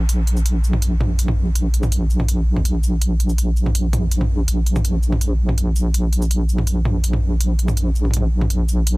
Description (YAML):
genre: half-time drum and bass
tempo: 164 BPM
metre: 4/4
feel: half-time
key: unclear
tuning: A4 = 439 Hz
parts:
  - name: deep soft wobble bass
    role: bass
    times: 0.0-9.0 s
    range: Bb1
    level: -17 LUFS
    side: equal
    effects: chorus
  - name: drum and bass drum kit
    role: drums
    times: 0.1-8.9 s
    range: hi-hat, shaker, toms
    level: -25 LUFS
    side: right 1 dB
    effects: none
room: little or no reverb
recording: dense, heavily limited modern master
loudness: -16 LUFS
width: side -23 dB against mid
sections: 0.0-9.0 A section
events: none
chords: none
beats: | 0.09 0.45 0.82 1.19 | 1.55 1.92 2.28 2.65 | 3.02 3.38 3.75 4.11 | 4.48 4.84 5.21 5.58 | 5.94 6.31 6.67 7.04 | 7.41 7.77 8.14 8.50 | 8.87